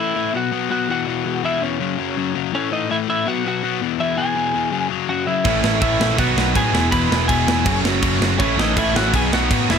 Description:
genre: punk rock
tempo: 164 BPM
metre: 4/4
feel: straight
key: E major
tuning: A4 = 440 Hz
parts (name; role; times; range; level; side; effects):
- lightly driven lead guitar; melody; 0.0-9.8 s; C#4 to B5; -22 LUFS; equal; none
- overdriven electric guitar; riff; 0.0-9.8 s; E2 to B3; -22 LUFS; left 13 dB; none
- tight distorted guitar; riff; 5.4-9.8 s; A2 to F#4; -22 LUFS; right 19 dB; distortion
- tight metal drum kit; drums; 5.4-9.8 s; crash cymbal, kick drum, snare drum; -22 LUFS; right 1 dB; none
- distorted electric guitar; riff; 5.5-9.8 s; E2 to B3; -25 LUFS; right 1 dB; distortion
- overdriven picked electric bass; bass; 5.5-9.8 s; E1 to A2; -23 LUFS; right 1 dB; none
room: little or no reverb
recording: none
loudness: -17 LUFS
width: side -6 dB against mid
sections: 0.0-9.8 A section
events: none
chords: 0.3 B5; 0.9 E5; 1.8 F#5; 2.5 A; 3.3 B5; 3.8 E; 4.7 F#5; 5.5 A; 6.2 B; 6.7 E; 7.7 F#m; 8.4 A; 9.1 B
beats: 0.34 0.71 | 1.07 1.44 1.80 2.17 | 2.53 2.90 3.26 3.63 | 3.99 4.36 4.72 5.09 | 5.46 5.82 6.19 6.56 | 6.93 7.29 7.66 8.03 | 8.40 8.77 9.14 9.51

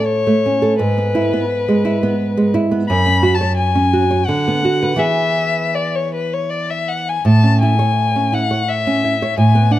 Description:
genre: romantic duo for violin and classical guitar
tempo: 78-88 BPM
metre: 3/4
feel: rubato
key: A major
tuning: A4 = 439 Hz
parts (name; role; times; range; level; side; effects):
- warm violin; melody; 0.0-9.8 s; B4 to B5; -19 LUFS; left 5 dB; none
- nylon-string guitar; accompaniment; 0.0-9.8 s; F#2 to C#5; -15 LUFS; right 2 dB; none
room: light reverb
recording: close, detailed microphones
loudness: -14 LUFS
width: side -14 dB against mid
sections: 0.0-9.8 A section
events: none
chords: 0.0 A; 0.8 E/G#; 2.9 F#5; 4.3 Bm/D; 5.0 E; 7.2 A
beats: 0.06 | 0.80 1.51 2.21 | 2.90 3.58 4.28 | 5.00 5.75 6.49 | 7.24 7.97 8.69 | 9.38

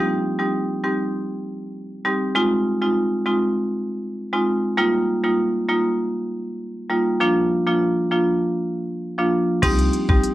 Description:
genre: dancehall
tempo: 99 BPM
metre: 4/4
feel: straight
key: C minor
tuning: A4 = 441 Hz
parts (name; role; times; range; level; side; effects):
- marimba with hard mallets; accompaniment; 0.0-10.3 s; F3 to G4; -19 LUFS; equal; cassette tape
- warm 808-style bass; bass; 9.6-10.2 s; Ab1 to C2; -22 LUFS; equal; none
- island pop drum kit; drums; 9.6-10.3 s; crash cymbal, hi-hat, kick drum; -21 LUFS; equal; cassette tape
room: light reverb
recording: home recording on cassette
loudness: -19 LUFS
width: side -15 dB against mid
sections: 0.0-9.6 A section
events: none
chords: 0.0 Cm; 2.4 Fm7; 4.8 Ebadd9; 7.2 Bb; 9.6 Cm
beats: 0.54 1.14 1.75 | 2.35 2.96 3.57 4.17 | 4.78 5.38 5.99 6.60 | 7.20 7.81 8.41 9.02 | 9.63 10.23

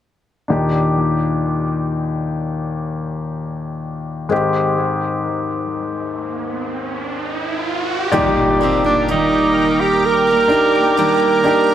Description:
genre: pop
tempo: 63 BPM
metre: 4/4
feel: straight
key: Eb major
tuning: A4 = 440 Hz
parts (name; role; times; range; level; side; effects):
- warm concert grand piano; accompaniment; 0.5-11.7 s; Eb2 to D5; -18 LUFS; left 2 dB; analog delay
- riser and impact; sound effects; 5.7-11.7 s; none; -25 LUFS; right 2 dB; none
- shimmering ambient pad; sustained chords; 9.0-11.7 s; Bb4 to F6; -20 LUFS; equal; chorus, built-in reverb
- picked steel-string acoustic guitar; arpeggios; 8.1-11.7 s; Eb3 to G4; -22 LUFS; right 6 dB; analog delay
- bright alto saxophone; melody; 8.6-11.7 s; C4 to Bb4; -15 LUFS; right 3 dB; analog delay
room: wet spring reverb, RT60 2.5 s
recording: echo-heavy mix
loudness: -16 LUFS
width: side -10 dB against mid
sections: 0.5-8.1 A section; 8.1-11.7 B section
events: riser 5.7-8.1; impact 8.1-11.7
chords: 0.5 Ebmaj7; 4.3 Abmaj7; 8.1 Ebmaj7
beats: | 0.50 1.46 2.41 3.36 | 4.31 5.26 6.22 7.17 | 8.12 9.07 10.03 10.98

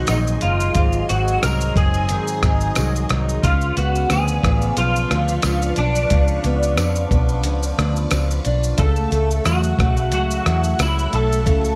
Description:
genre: indie pop, bedroom pop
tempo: 90 BPM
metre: 4/4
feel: swing 55% on 16ths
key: unclear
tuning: A4 = 439 Hz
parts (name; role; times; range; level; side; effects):
- electric guitar through a small old amp; melody; 0.0-11.8 s; D4 to A#4; -25 LUFS; equal; ensemble chorus
- picked steel-string acoustic guitar; accompaniment; 0.0-11.8 s; G#2 to E4; -28 LUFS; equal; subtle chorus, warbly pitch drift
- string machine, full ensemble; sustained chords; 0.0-11.8 s; A3 to C#6; -33 LUFS; equal; phaser, ensemble chorus
- vintage muted fingered electric bass; bass; 0.0-11.7 s; F#1 to E#2; -23 LUFS; equal; none
- dusty soul sampler-style drum kit; drums; 0.1-11.8 s; hi-hat, kick drum, rim click, shaker; -24 LUFS; equal; none
- tambourine; percussion; 0.1-11.0 s; none; -38 LUFS; equal; none
room: light reverb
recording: none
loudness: -19 LUFS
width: mono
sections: 0.0-11.8 A section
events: none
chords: 0.0 G#7; 3.4 C#7b9; 8.8 A6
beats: 0.09 | 0.76 1.43 2.10 2.77 | 3.44 4.11 4.78 5.44 | 6.11 6.78 7.45 8.12 | 8.79 9.45 10.12 10.79 | 11.46

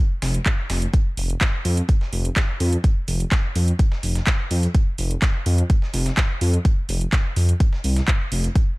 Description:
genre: progressive house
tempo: 126 BPM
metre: 4/4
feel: straight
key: unclear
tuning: A4 = 441 Hz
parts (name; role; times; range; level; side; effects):
- dark detuned saw bass; bass; 0.2-8.5 s; F1 to F2; -20 LUFS; equal; sidechain pumping
- dusty soul sampler-style drum kit; drums; 0.2-8.7 s; hi-hat, snare drum; -36 LUFS; equal; sidechain pumping on hats, high-pass filter on hats, high-pass filter on snare, high-pass filter on room
- house drum kit; drums; 0.2-8.7 s; handclaps, hi-hat; -27 LUFS; right 1 dB; none
- electronic kick drum; drums; 0.5-8.7 s; none; -18 LUFS; equal; none
room: little or no reverb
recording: dark, warm production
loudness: -18 LUFS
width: side -23 dB against mid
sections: 0.0-8.8 A section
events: none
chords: none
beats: 0.46 | 0.94 1.41 1.89 2.36 | 2.84 3.32 3.79 4.27 | 4.75 5.22 5.70 6.17 | 6.65 7.13 7.60 8.08 | 8.55

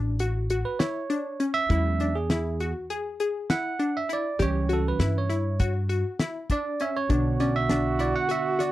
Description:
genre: progressive instrumental, band music in an uneven meter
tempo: 200 BPM (eighths)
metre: 9/8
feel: straight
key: unclear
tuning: A4 = 438 Hz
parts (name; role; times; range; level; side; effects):
- glassy wavetable pluck; arpeggios; 0.0-8.7 s; C#4 to G#4; -30 LUFS; left 3 dB; chorus
- upright bass; bass; 0.0-8.1 s; A1 to G2; -27 LUFS; equal; none
- damped 70s drum kit; drums; 0.2-8.7 s; hi-hat, kick drum, snare drum; -27 LUFS; left 1 dB; none
- barky tine electric piano; accompaniment; 0.7-8.7 s; D3 to F#5; -28 LUFS; right 4 dB; none
- warm flugelhorn; second line; 7.1-8.7 s; F#4; -29 LUFS; right 4 dB; none
room: little or no reverb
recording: dry, close 1970s-style studio recording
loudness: -24 LUFS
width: side -15 dB against mid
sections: 0.0-8.7 A section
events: tine electric piano solo 0.0-8.7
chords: 0.0 Dmaj7; 1.7 E6; 4.4 C#dim; 7.1 Bmadd9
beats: 0.20 0.50 0.80 1.10 1.40 | 1.70 2.00 2.30 2.60 2.90 3.20 3.50 3.80 4.10 | 4.40 4.70 5.00 5.30 5.60 5.90 6.20 6.50 6.80 | 7.10 7.40 7.70 8.00 8.30 8.60

